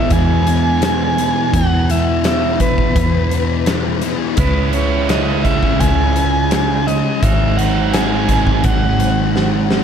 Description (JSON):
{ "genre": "rock, shoegaze and dream pop", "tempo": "84 BPM", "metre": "4/4", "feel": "straight", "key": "E major", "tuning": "A4 = 445 Hz", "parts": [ { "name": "reedy FM lead", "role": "melody", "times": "0.0-9.7 s", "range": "B4 to G#5", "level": "-20 LUFS", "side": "equal", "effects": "chorus, tape echo" }, { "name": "biting overdriven guitar", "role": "riff", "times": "0.0-9.8 s", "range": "G#2 to E4", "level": "-20 LUFS", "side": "right 10 dB", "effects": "reverse reverb" }, { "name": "thick fuzz guitar", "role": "riff", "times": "0.0-9.8 s", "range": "E2 to C#4", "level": "-20 LUFS", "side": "left 10 dB", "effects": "distortion, analog chorus" }, { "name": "vintage muted fingered electric bass", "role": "bass", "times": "0.1-9.8 s", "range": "G#1 to E2", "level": "-19 LUFS", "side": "equal", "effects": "none" }, { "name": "big rock drum kit", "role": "drums", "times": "0.1-9.8 s", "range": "hi-hat, kick drum, snare drum", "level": "-20 LUFS", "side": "equal", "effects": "none" } ], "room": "moderate plate reverb, RT60 2.5 s", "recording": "dreamy mix soaked in reverb", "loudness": "-13 LUFS", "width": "side -8 dB against mid", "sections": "0.0-9.8 A section", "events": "drum fill 9.4-9.8", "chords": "0.0 E; 4.4 C#m; 7.2 G#7", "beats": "0.12 0.83 | 1.54 2.25 2.96 3.67 | 4.38 5.09 5.80 6.52 | 7.23 7.94 8.65 9.36" }